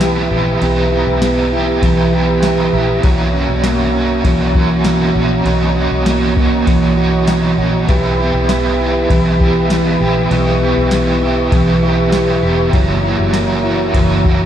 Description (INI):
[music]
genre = dream pop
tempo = 99 BPM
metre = 4/4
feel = straight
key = unclear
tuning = A4 = 444 Hz
[part]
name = crunchy overdriven guitar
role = accompaniment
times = 0.0-14.5 s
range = F#2 to G4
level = -18 LUFS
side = right 4 dB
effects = tremolo, ensemble chorus
[part]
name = percussive tonewheel organ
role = sustained chords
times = 0.0-14.5 s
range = F#4 to C#6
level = -18 LUFS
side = right 1 dB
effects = chorus vibrato, slow rotary speaker
[part]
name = mellow electric guitar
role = arpeggios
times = 0.0-14.5 s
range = F#2 to G4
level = -17 LUFS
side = left 1 dB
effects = wide subtle chorus, ping-pong delay
[part]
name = vintage muted fingered electric bass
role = bass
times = 0.0-14.5 s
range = E1 to B1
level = -19 LUFS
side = equal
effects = none
[part]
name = soft vintage rhythm box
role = drums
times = 0.0-14.4 s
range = kick drum, ride cymbal, snare drum, tambourine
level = -16 LUFS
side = left 1 dB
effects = overdrive
[sound]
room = light reverb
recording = played on a big sound system in a bare room, stone room reverb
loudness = -12 LUFS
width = side -10 dB against mid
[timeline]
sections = 0.0-14.5 A section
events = none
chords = 0.0 Em; 3.0 F#7; 7.9 Em; 12.7 F#7